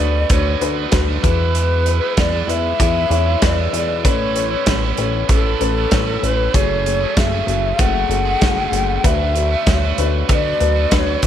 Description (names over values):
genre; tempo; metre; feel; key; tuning
piano-driven pop; 96 BPM; 4/4; straight; unclear; A4 = 445 Hz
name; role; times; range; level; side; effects
breathy mellow shakuhachi; melody; 0.0-11.3 s; A4 to F#5; -21 LUFS; left 1 dB; none
dark upright piano; accompaniment; 0.0-11.3 s; A2 to D5; -24 LUFS; left 10 dB; none
overdriven semi-hollow guitar; riff; 0.0-11.3 s; E2 to G#4; -24 LUFS; right 12 dB; none
chorused synth bass; bass; 0.0-11.3 s; F#1 to E2; -20 LUFS; equal; none
modern studio drum kit; drums; 0.3-11.3 s; hi-hat, kick drum, snare drum; -19 LUFS; right 1 dB; none
room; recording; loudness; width
light reverb, small room ambience; 1960s-style stereo with parts hard left and right; -14 LUFS; side -10 dB against mid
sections
0.0-11.3 A section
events
none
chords
0.0 D6; 1.2 E; 4.0 Aadd9; 6.5 F#madd9; 9.0 D6